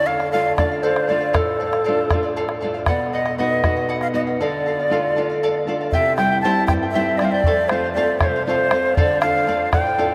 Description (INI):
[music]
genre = andean folk, Andean ensemble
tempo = 79 BPM (dotted quarters)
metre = 6/8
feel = straight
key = unclear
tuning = A4 = 440 Hz
[part]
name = breathy large quena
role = melody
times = 0.0-10.1 s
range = A4 to A5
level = -22 LUFS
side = equal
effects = none
[part]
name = charango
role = accompaniment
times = 0.0-10.1 s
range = E4 to G5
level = -28 LUFS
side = equal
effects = none
[part]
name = nylon-string guitar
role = accompaniment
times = 0.0-10.1 s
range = F2 to F#4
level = -26 LUFS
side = equal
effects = none
[part]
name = bombo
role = percussion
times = 0.2-9.8 s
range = none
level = -26 LUFS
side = equal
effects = none
[sound]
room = wet huge ambient reverb, RT60 7.1 s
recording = in a vast, echoing space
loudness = -19 LUFS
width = mono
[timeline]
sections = 0.0-5.9 A section; 5.9-10.1 B section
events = none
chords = 0.0 Dm; 2.9 B; 4.4 Dm; 5.9 C; 7.5 F; 9.0 Dm